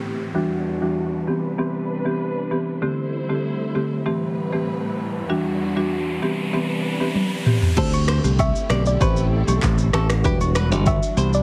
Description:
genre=afrobeats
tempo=97 BPM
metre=4/4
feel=straight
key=E minor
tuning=A4 = 440 Hz
part: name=warm studio string section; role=sustained chords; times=0.0-11.4 s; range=C2 to C5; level=-32 LUFS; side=equal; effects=low-pass filter, plate reverb
part: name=downlifter and riser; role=sound effects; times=0.0-7.8 s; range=none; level=-37 LUFS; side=equal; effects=none
part: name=buzzing marimba with medium hard mallets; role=accompaniment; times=0.3-11.4 s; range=D3 to G4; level=-26 LUFS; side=equal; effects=low-pass filter, plate reverb
part: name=afro-pop drum kit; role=drums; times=7.2-11.4 s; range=crash cymbal, finger snaps, handclaps, kick drum, rim click, shaker, toms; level=-24 LUFS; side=equal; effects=overdrive, vintage 12-bit sampler grit
part: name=soft round pluck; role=melody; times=7.8-11.4 s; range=B4 to E5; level=-30 LUFS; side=equal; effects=chorus, plate reverb
part: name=clean electric guitar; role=riff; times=7.8-11.3 s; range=G4 to D5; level=-33 LUFS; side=equal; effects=subtle chorus
part: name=modern bright fingered electric bass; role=bass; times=7.8-11.4 s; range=E1 to D2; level=-22 LUFS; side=equal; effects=none
part: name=agogo bells and woodblock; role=percussion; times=7.9-11.0 s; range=none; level=-34 LUFS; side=equal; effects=none
room=light reverb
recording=heavily compressed radio sound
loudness=-22 LUFS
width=mono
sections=0.0-7.8 A section; 7.8-11.4 B section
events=filter sweep 0.0-7.8; riser 3.6-7.8; drum fill 7.2-7.8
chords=0.3 Em9; 1.3 Cmaj7; 2.8 D7sus4; 4.1 Am7; 5.3 Em9; 6.2 Cmaj7; 7.8 D7sus4; 9.0 Am7; 10.2 Em9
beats=| 0.35 0.97 1.58 2.20 | 2.82 3.44 4.06 4.68 | 5.30 5.92 6.53 7.15 | 7.77 8.39 9.01 9.63 | 10.24 10.86

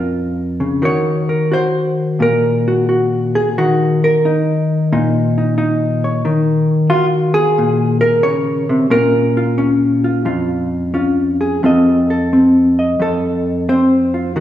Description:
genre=solo jazz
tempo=89 BPM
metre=4/4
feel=swing 67% on 8ths, rubato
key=unclear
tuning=A4 = 442 Hz
part: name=hollow-body jazz guitar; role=solo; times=0.0-14.4 s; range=F2 to Eb5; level=-13 LUFS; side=equal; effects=none
room=wet concert hall reverb, RT60 1.8 s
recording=studio ambience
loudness=-13 LUFS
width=side -11 dB against mid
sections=0.0-14.4 A section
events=none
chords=0.0 Bbm; 0.8 Ebm7; 8.9 Bbm; 11.6 F7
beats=0.15 | 0.84 1.52 2.21 2.88 | 3.56 4.24 4.91 5.58 | 6.24 6.90 7.57 8.24 | 8.91 9.59 10.26 10.94 | 11.63 12.32 13.00 13.68 | 14.36

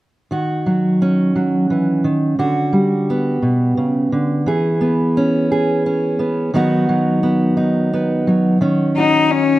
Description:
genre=acoustic folk-pop ballad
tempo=58 BPM (dotted quarters)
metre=6/8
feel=straight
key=unclear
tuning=A4 = 439 Hz
part: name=fingerpicked steel-string acoustic guitar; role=accompaniment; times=0.3-9.6 s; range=B2 to G#4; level=-15 LUFS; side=right 1 dB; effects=none
part: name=warm cello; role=melody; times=9.0-9.6 s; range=C#4 to D#4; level=-12 LUFS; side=left 5 dB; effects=slapback echo
room=moderate large studio reverb, RT60 1.5 s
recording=close, detailed microphones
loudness=-14 LUFS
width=side -16 dB against mid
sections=0.3-8.6 A section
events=none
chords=0.3 D#m7; 2.4 Gmaj7/D; 4.5 E6; 6.5 B/D#; 8.6 D#m7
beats=| 0.31 1.35 | 2.38 3.42 | 4.46 5.50 | 6.54 7.58 | 8.62

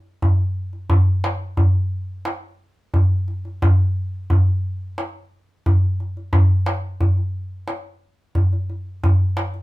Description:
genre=arabic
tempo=88 BPM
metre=4/4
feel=straight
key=none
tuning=none
part: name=darbuka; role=percussion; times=0.2-9.6 s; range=none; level=-18 LUFS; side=equal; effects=none
room=moderate studio reverb, RT60 0.5 s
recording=minimal, uncompressed stereo recording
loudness=-18 LUFS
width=side -19 dB against mid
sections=0.2-9.6 A section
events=none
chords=none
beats=| 0.22 0.90 1.58 2.26 | 2.94 3.62 4.30 4.97 | 5.65 6.33 7.01 7.68 | 8.36 9.04

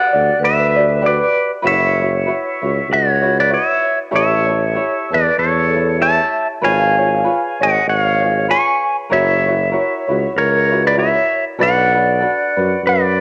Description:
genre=Hawaiian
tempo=96 BPM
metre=4/4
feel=swing 58% on 8ths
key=unclear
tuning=A4 = 440 Hz
part: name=pedal steel guitar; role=melody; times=0.0-13.2 s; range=F#4 to C#6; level=-18 LUFS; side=equal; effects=none
part: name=vibraphone with medium mallets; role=second line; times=0.0-13.2 s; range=F#4 to G#5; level=-28 LUFS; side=equal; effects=none
part: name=tenor ukulele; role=accompaniment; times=0.0-13.2 s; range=D4 to D5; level=-24 LUFS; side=equal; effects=cassette tape
part: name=warm tuba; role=bass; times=0.1-13.2 s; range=F#1 to F#2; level=-22 LUFS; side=equal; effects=transformer saturation
room=moderate spring reverb, RT60 1.9 s, studio reverb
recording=home recording on cassette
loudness=-16 LUFS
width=mono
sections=0.0-13.2 A section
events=none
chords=0.0 Gmaj7; 1.6 F#7sus4; 4.1 A7; 6.6 C#7/G#; 9.1 F#7; 11.6 Bm7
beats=0.40 1.02 | 1.64 2.27 2.89 3.51 | 4.13 4.75 5.38 6.00 | 6.62 7.25 7.87 8.49 | 9.11 9.73 10.36 10.98 | 11.60 12.22 12.84

